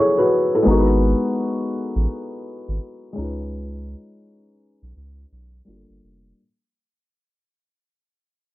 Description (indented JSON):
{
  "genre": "lo-fi hip hop",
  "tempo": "84 BPM",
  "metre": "4/4",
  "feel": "swing 62% on 16ths",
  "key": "unclear",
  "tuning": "A4 = 441 Hz",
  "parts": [
    { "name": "felt-muted upright piano", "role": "accompaniment", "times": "0.0-6.4 s", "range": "F#3 to C#5", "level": "-19 LUFS", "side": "left 1 dB", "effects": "cassette tape, low-pass filter" },
    { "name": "soft dub sub bass", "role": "bass", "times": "0.7-6.3 s", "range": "F1 to C#2", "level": "-23 LUFS", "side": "equal", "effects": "none" }
  ],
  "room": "moderate small room reverb, RT60 0.6 s",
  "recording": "dark, warm production",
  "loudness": "-18 LUFS",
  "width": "side -16 dB against mid",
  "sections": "0.0-6.4 A section",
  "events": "fade-out 0.0-6.4",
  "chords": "0.0 B7sus4; 0.7 G#m7; 3.2 C#7; 5.7 Gm7",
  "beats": "| 0.66 1.38 2.09 2.81 | 3.52 4.24 4.95 5.66"
}